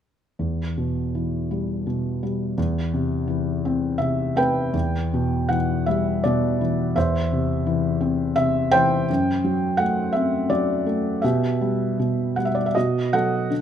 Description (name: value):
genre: classical, lyrical solo piano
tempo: 78-87 BPM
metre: 3/4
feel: rubato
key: E minor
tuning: A4 = 440 Hz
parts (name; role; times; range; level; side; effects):
- felt-muted upright piano; solo; 0.4-13.6 s; E2 to G5; -20 LUFS; equal; none
room: light reverb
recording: close, detailed microphones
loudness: -20 LUFS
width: side -9 dB against mid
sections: 0.4-4.7 A section; 4.7-13.6 B section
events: none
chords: 0.4 Em; 2.6 Cmaj7/E; 4.7 Em; 7.0 C/E; 9.1 F#dim; 11.2 Em/B; 12.8 B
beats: | 0.40 1.14 1.87 | 2.58 3.28 4.00 | 4.75 5.50 6.24 | 6.96 7.67 8.38 | 9.09 9.80 10.50 | 11.23 11.99 12.76 | 13.52